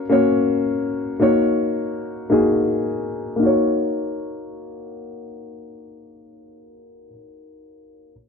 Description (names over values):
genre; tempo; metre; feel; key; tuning
afrobeats; 109 BPM; 4/4; swing 55% on 16ths; Eb minor; A4 = 440 Hz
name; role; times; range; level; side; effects
dark concert grand piano; accompaniment; 0.0-8.1 s; Bb3 to Db5; -19 LUFS; left 2 dB; none
room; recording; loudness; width
light reverb; dark, warm production, low-pass filter; -18 LUFS; side -6 dB against mid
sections
0.0-3.4 A section; 3.4-5.6 B section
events
filter sweep 0.0-3.4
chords
0.0 Gb; 1.2 Ebm7